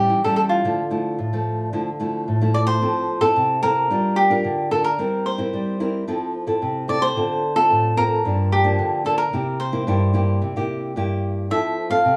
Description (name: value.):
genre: samba.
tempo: 110 BPM.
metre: 4/4.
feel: straight.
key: F major.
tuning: A4 = 440 Hz.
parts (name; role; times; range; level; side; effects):
cavaquinho; melody; 0.0-12.2 s; F4 to F5; -23 LUFS; equal; plate reverb.
nylon-string guitar; accompaniment; 0.0-12.2 s; G2 to Bb4; -24 LUFS; equal; none.
room: wet studio ambience, RT60 0.5 s.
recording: heard from further back in the room.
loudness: -21 LUFS.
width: mono.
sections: 0.0-2.8 A section; 2.8-12.2 B section.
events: none.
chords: 0.0 A7; 0.6 Dmadd9; 2.8 Fmaj7; 3.9 Gm7; 5.0 C7/G; 6.1 Fmaj7; 7.2 Dm7; 8.2 Gm7; 9.3 C7; 11.5 Fmaj7.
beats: 0.10 | 0.64 1.19 1.73 2.27 | 2.82 3.36 3.90 4.45 | 4.99 5.53 6.08 6.62 | 7.16 7.71 8.25 8.79 | 9.34 9.88 10.42 10.96 | 11.51 12.05.